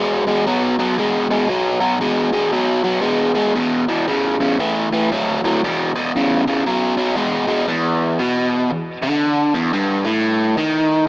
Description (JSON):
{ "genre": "rock", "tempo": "116 BPM", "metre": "4/4", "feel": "swing 62% on 8ths", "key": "E mixolydian", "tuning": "A4 = 440 Hz", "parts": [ { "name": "biting overdriven guitar", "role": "solo", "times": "0.0-11.1 s", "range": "E2 to G#3", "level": "-15 LUFS", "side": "equal", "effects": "analog delay" } ], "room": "moderate large studio reverb, RT60 1.0 s, digital ambience", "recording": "small speaker sound, faint mains hum", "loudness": "-16 LUFS", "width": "side -22 dB against mid", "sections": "0.0-7.7 A section; 7.7-11.1 B section", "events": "none", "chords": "0.0 B5; 3.5 E5; 4.6 A5; 5.6 E5; 6.6 B5; 7.7 E5; 9.7 D#(#11)/G", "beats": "0.45 0.96 | 1.48 2.00 2.52 3.03 | 3.55 4.06 4.58 5.09 | 5.61 6.12 6.64 7.16 | 7.67 8.18 8.70 9.21 | 9.73 10.24 10.75" }